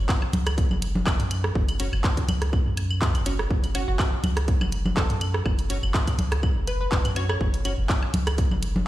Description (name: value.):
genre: minimal techno.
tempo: 123 BPM.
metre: 4/4.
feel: swing 54% on 16ths.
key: F# minor.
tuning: A4 = 441 Hz.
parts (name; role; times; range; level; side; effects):
punchy sub bass; bass; 0.0-8.8 s; F#1 to F#2; -26 LUFS; equal; sidechain pumping.
electronic kick drum; drums; 0.1-8.5 s; none; -24 LUFS; equal; overdrive.
house drum kit; drums; 0.1-8.7 s; handclaps, hi-hat; -31 LUFS; equal; overdrive.
electronic claves, woodblock, congas and rim click; percussion; 0.1-8.8 s; none; -30 LUFS; right 1 dB; dub echo.
wavetable chord stab; stabs; 1.8-7.7 s; C#4 to C#5; -38 LUFS; equal; dub echo.
hollow square pluck; melody; 3.7-7.4 s; F#4 to C#5; -35 LUFS; equal; analog chorus, dub echo.
room: digital ambience.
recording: played on a big sound system in a bare room, large studio reverb, lossy compression artefacts.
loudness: -22 LUFS.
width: side -15 dB against mid.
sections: 0.0-8.9 A section.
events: none.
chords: 0.0 F#5.